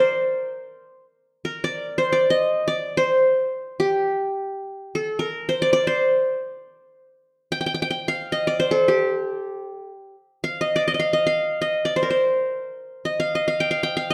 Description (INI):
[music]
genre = Turkish makam ensemble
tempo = free time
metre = none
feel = none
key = G makam ussak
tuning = A4 = 439 Hz
[part]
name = qanun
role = solo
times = 0.0-14.1 s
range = G4 to G5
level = -22 LUFS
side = equal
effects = none
[sound]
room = moderate recital hall reverb, RT60 1.4 s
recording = none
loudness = -23 LUFS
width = mono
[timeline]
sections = 0.0-10.1 A section; 10.1-14.1 A section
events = none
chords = none